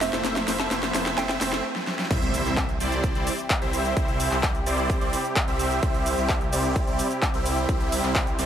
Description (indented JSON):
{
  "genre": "EDM, festival progressive house",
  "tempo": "129 BPM",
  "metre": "4/4",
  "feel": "straight",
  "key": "C major",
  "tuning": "A4 = 442 Hz",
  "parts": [
    { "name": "mallet-like synth pluck", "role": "melody", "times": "0.0-1.4 s", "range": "E5 to A5", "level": "-34 LUFS", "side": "right 5 dB", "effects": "chorus, phaser, vintage 12-bit sampler grit, tape echo" },
    { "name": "lush unison pad", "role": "sustained chords", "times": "0.0-8.5 s", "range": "C3 to G4", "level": "-32 LUFS", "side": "equal", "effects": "chorus, sidechain pumping" },
    { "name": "supersaw chords", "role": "riff", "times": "0.0-8.5 s", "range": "G3 to E5", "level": "-28 LUFS", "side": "right 1 dB", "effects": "phaser, sidechain pumping, tape echo" },
    { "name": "detuned saw bass", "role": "bass", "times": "0.0-8.5 s", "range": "F1 to C2", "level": "-30 LUFS", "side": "equal", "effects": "tube saturation, sidechain pumping" },
    { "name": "big-room dance drum kit", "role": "drums", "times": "0.0-8.5 s", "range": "crash cymbal, handclaps, hi-hat, shaker, snare drum", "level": "-29 LUFS", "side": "equal", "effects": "none" },
    { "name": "riser and impact", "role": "sound effects", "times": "0.0-4.0 s", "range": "none", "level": "-34 LUFS", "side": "equal", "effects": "none" },
    { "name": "warm concert grand piano", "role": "accompaniment", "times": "0.1-1.5 s", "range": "A2 to C5", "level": "-35 LUFS", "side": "left 4 dB", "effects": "none" },
    { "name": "electronic kick drum", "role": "drums", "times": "2.1-8.2 s", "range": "none", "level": "-26 LUFS", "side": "equal", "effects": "none" }
  ],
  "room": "light reverb, digital ambience",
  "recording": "none",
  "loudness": "-22 LUFS",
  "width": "side -9 dB against mid",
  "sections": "0.0-2.1 A section; 2.1-8.5 B section",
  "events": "build-up 0.0-2.1; drum fill 0.0-1.6, 1.8-2.1; riser 0.0-1.6; stop 1.6-2.1; drop 2.1-8.5; impact 2.1-4.0",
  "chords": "0.0 F; 2.1 C",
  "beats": "| 0.25 0.71 1.18 1.64 | 2.11 2.57 3.04 3.50 | 3.97 4.43 4.90 5.36 | 5.83 6.29 6.76 7.22 | 7.69 8.15"
}